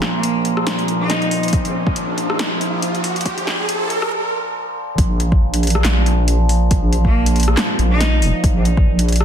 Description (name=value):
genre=deep dubstep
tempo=139 BPM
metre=4/4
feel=swing 56% on 16ths, half-time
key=unclear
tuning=A4 = 440 Hz
part: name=overtone-sweeping drone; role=sustained chords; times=0.0-9.2 s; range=Bb2 to F3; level=-22 LUFS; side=equal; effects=chorus, built-in reverb
part: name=deep soft wobble bass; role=bass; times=0.0-9.2 s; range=F1 to Bb1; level=-18 LUFS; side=equal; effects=chorus, high-pass filter
part: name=deep house drum kit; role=drums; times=0.0-9.2 s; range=handclaps, hi-hat, rim click, snare drum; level=-22 LUFS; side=equal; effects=overdrive, high-pass filter on hats, high-pass filter on snare, high-pass filter on toms, high-pass filter on room
part: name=riser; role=sound effects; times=1.0-4.1 s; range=none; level=-24 LUFS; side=right 2 dB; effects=none
part: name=bright cello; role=melody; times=0.1-1.4, 7.0-8.3 s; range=Bb3 to Eb4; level=-24 LUFS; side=right 2 dB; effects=dub echo
part: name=electronic kick drum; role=drums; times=1.5-8.8 s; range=none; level=-17 LUFS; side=equal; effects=overdrive
room=light reverb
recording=dense, heavily limited modern master, high-pass filter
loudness=-15 LUFS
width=side -9 dB against mid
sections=0.0-5.0 A section; 5.0-9.2 B section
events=build-up 0.0-5.0; riser 1.0-4.1; break 4.1-5.0; drop 5.0-9.2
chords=0.0 Bb5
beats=0.23 0.67 1.10 | 1.53 1.96 2.39 2.82 | 3.26 3.69 4.12 4.55 | 4.98 5.41 5.85 6.28 | 6.71 7.14 7.57 8.00 | 8.44 8.87